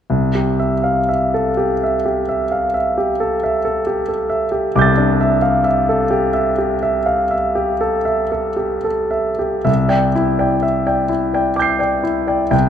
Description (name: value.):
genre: classical, impressionist solo piano.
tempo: 53-68 BPM.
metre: 5/4.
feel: rubato.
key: C major.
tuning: A4 = 441 Hz.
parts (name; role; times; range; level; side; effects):
clear grand piano; solo; 0.1-12.7 s; C2 to C7; -15 LUFS; equal; none.
room: moderate recital hall reverb, RT60 1.4 s.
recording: close, detailed microphones.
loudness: -15 LUFS.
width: side -9 dB against mid.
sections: 0.1-9.7 A section; 9.7-12.7 B section.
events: none.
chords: 0.1 C69; 9.7 Cadd9.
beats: | 0.09 1.08 2.06 2.99 3.89 | 4.78 5.69 6.62 7.58 8.60 | 9.68 10.67 11.59 12.53.